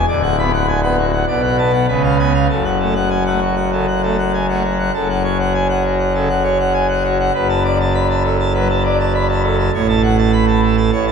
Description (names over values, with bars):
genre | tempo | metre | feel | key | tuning
classical, organ toccata | 100 BPM | 4/4 | straight | F# minor | A4 = 444 Hz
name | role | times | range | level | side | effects
pipe organ, full organ | solo | 0.0-11.1 s | D1 to B5 | -14 LUFS | equal | none
room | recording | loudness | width
wet church reverb, RT60 2.7 s | minimal, uncompressed stereo recording | -14 LUFS | side -6 dB against mid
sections
0.0-4.9 A section; 4.9-11.1 A section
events
none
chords
0.1 Bm/D; 1.3 Bm7; 1.9 C#7; 2.5 F#m; 7.3 Bm7/F#; 9.7 F#m/A